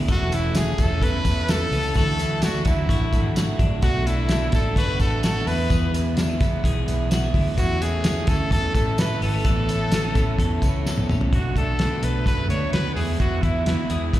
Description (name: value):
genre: jangly indie pop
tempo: 128 BPM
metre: 4/4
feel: straight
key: A major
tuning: A4 = 440 Hz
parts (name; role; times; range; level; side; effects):
- raw garage guitar; accompaniment; 0.0-14.2 s; B2 to C#5; -29 LUFS; right 6 dB; overdrive, slapback echo
- twelve-string electric guitar; arpeggios; 0.0-14.2 s; E3 to A4; -30 LUFS; left 7 dB; slapback echo
- vintage muted fingered electric bass; bass; 0.0-14.2 s; E1 to A2; -24 LUFS; equal; none
- clear trumpet; melody; 0.1-14.2 s; E4 to C#5; -27 LUFS; equal; slapback echo, tape echo
- vibraphone with medium mallets; second line; 0.1-10.8 s; E5 to B5; -39 LUFS; left 1 dB; none
- cloth-damped thuddy drum kit; drums; 0.1-14.2 s; hi-hat, kick drum, snare drum, toms; -23 LUFS; equal; none
- tambourine; percussion; 0.1-11.2 s; none; -40 LUFS; right 3 dB; none
room: small room ambience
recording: live gig heard through the venue's PA, recital hall reverb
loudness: -19 LUFS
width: side -14 dB against mid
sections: 0.0-11.3 A section; 11.3-14.2 B section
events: drum fill 10.9-11.3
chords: 0.1 A/E; 2.0 Dadd9; 3.8 Bm7; 5.5 E; 7.6 A; 9.4 Aadd9; 11.3 Bm7; 13.0 E